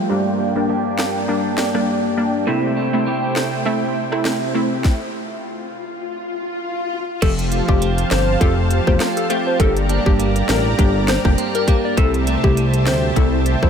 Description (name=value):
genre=dancehall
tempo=101 BPM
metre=4/4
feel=swing 56% on 16ths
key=F major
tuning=A4 = 439 Hz
part: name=analog pluck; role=accompaniment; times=0.0-13.7 s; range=G3 to G4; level=-23 LUFS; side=left 2 dB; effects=chorus, sidechain pumping, low-pass filter
part: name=lush unison pad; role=sustained chords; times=0.0-13.7 s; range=A3 to Bb5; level=-24 LUFS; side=equal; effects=chorus, sidechain pumping, low-pass filter
part: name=clean electric guitar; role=arpeggios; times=0.0-13.7 s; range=G2 to A4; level=-24 LUFS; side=right 8 dB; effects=analog chorus, low-pass filter
part: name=island pop drum kit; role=drums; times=1.0-13.7 s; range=crash cymbal, hi-hat, kick drum, rim click, snare drum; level=-21 LUFS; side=equal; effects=none
part: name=swell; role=sound effects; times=5.4-7.2 s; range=none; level=-28 LUFS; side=left 3 dB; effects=none
part: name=soft struck synth lead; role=melody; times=7.2-13.7 s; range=G4 to D5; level=-23 LUFS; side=left 3 dB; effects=chorus, ping-pong delay
part: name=fat analog bass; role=bass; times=7.2-13.7 s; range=E1 to D2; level=-19 LUFS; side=equal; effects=none
room=moderate huge ambient reverb, RT60 5.6 s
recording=dreamy mix soaked in reverb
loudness=-16 LUFS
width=side -7 dB against mid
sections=0.0-7.2 A section; 7.2-13.7 B section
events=filter sweep 0.0-7.2; stop 4.8-7.2; swell 5.4-7.2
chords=0.1 Gm; 2.5 C6; 4.8 N.C.; 7.2 Fadd9; 9.6 Gm; 12.0 C6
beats=| 0.09 0.69 1.28 1.88 | 2.47 3.06 3.66 4.25 | 4.85 5.44 6.03 6.63 | 7.22 7.82 8.41 9.01 | 9.60 10.19 10.79 11.38 | 11.97 12.57 13.16